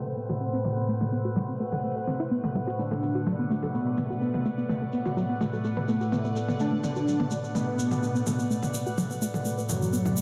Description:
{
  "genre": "melodic techno",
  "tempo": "126 BPM",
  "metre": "4/4",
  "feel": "straight",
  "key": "unclear",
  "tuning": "A4 = 439 Hz",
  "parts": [
    { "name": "evolving wavetable pad", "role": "sustained chords", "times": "0.0-10.2 s", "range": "A2 to F#5", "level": "-34 LUFS", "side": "equal", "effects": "phaser, built-in reverb" },
    { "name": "tight sequenced synth", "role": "arpeggios", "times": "0.0-10.2 s", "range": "E3 to C5", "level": "-33 LUFS", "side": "equal", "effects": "chorus, cassette tape, delay" },
    { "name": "electronic toms", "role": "drums", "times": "0.3-10.1 s", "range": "none", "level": "-36 LUFS", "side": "equal", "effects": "none" },
    { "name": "fat analog lead", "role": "melody", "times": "2.8-10.2 s", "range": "F#3 to D4", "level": "-33 LUFS", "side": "equal", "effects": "ensemble chorus, delay" },
    { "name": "tube shaker", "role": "percussion", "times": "2.8-10.2 s", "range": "none", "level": "-42 LUFS", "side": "equal", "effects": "none" }
  ],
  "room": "wet huge ambient reverb, RT60 7.6 s",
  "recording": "dreamy mix soaked in reverb, low-pass filter",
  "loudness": "-28 LUFS",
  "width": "mono",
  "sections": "0.0-10.2 A section",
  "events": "filter sweep 0.0-10.2",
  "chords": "0.0 Am; 2.8 Bm/A",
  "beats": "0.41 | 0.89 1.36 1.84 2.31 | 2.79 3.27 3.74 4.22 | 4.69 5.17 5.65 6.12 | 6.60 7.08 7.55 8.03 | 8.50 8.98 9.46 9.93"
}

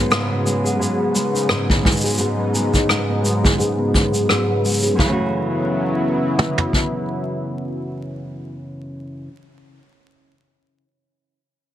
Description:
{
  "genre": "folktronica",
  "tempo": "86 BPM",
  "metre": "4/4",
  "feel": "swing 56% on 16ths",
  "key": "F# dorian",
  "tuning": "A4 = 436 Hz",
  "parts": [
    { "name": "warm analog pad", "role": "sustained chords", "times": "0.0-8.6 s", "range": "G#2 to E4", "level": "-23 LUFS", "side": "equal", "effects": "chorus" },
    { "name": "nylon-string guitar", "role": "arpeggios", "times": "0.0-9.3 s", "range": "F#2 to G#4", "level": "-21 LUFS", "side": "equal", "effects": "low-pass filter, ping-pong delay" },
    { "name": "shaker and rim click", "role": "drums", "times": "0.1-5.0 s", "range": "none", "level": "-22 LUFS", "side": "left 1 dB", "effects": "none" },
    { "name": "vintage brush drum kit", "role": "drums", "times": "1.7-6.9 s", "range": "kick drum, toms", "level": "-18 LUFS", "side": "equal", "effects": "none" }
  ],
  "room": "light reverb, small room ambience",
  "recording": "vinyl crackle",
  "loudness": "-17 LUFS",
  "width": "side -11 dB against mid",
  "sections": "0.0-5.0 A section; 5.0-7.8 B section",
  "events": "filter sweep on nylon-string guitar 0.0-5.0",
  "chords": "0.0 G#m; 5.0 F#m7",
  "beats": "0.10 0.80 1.50 | 2.19 2.89 3.59 4.29 | 4.98 5.68 6.38 7.08"
}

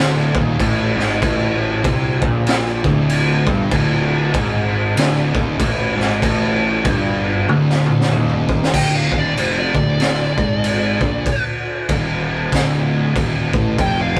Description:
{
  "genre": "stoner and doom metal",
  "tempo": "96 BPM",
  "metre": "4/4",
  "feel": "swing 60% on 8ths",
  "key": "unclear",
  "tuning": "A4 = 439 Hz",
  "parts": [
    { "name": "crunchy overdriven guitar", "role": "riff", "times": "0.0-8.7 s", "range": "D2 to C3", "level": "-27 LUFS", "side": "equal", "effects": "none" },
    { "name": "thick fuzz guitar", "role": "riff", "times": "0.0-14.2 s", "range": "D2 to C3", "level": "-25 LUFS", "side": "equal", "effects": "distortion" },
    { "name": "thick fuzz guitar", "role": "riff", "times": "0.0-14.2 s", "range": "D2 to C3", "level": "-25 LUFS", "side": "equal", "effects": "distortion" },
    { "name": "fuzz picked electric bass", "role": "bass", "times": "0.0-14.2 s", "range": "D1 to C2", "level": "-26 LUFS", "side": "equal", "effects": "overdrive" },
    { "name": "raw garage drum kit", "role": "drums", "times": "0.3-14.2 s", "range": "crash cymbal, kick drum, snare drum, toms", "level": "-21 LUFS", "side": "equal", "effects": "none" },
    { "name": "fuzz lead guitar", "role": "melody", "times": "8.7-14.2 s", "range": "C5 to G5", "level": "-25 LUFS", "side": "equal", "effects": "wah, distortion, analog delay" }
  ],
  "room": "moderate stone room reverb, RT60 1.3 s",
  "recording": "band playing live in one room",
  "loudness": "-17 LUFS",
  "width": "mono",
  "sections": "0.0-8.7 A section; 8.7-14.2 B section",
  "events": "drum fill 7.5-8.7; lead electric guitar solo 8.7-14.2",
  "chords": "0.0 D5; 8.7 Dm",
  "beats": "0.60 | 1.22 1.85 2.47 3.10 | 3.72 4.34 4.97 5.60 | 6.22 6.85 7.48 8.11 | 8.74 9.37 10.00 10.63 | 11.26 11.89 12.52 13.15 | 13.79"
}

